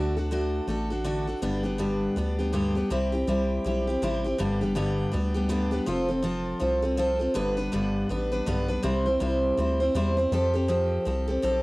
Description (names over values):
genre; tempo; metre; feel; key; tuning
honky-tonk and classic country; 162 BPM; 4/4; swing 60% on 8ths; C major; A4 = 443 Hz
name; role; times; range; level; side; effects
picked steel-string acoustic guitar; accompaniment; 0.0-11.6 s; G2 to C5; -25 LUFS; equal; none
rubbery square bass; bass; 0.0-11.6 s; F1 to F2; -30 LUFS; equal; none
room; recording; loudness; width
light reverb; home recording on cassette; -24 LUFS; side -21 dB against mid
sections
0.0-2.9 A section; 2.9-11.6 B section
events
none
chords
0.0 D; 1.4 G; 2.9 C; 4.4 G; 5.9 F; 7.4 G; 8.8 C; 10.3 Fadd9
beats
0.31 0.69 1.06 | 1.43 1.80 2.17 2.54 | 2.91 3.28 3.65 4.02 | 4.39 4.76 5.14 5.51 | 5.88 6.25 6.62 6.99 | 7.36 7.73 8.10 8.47 | 8.84 9.21 9.58 9.96 | 10.33 10.70 11.07 11.44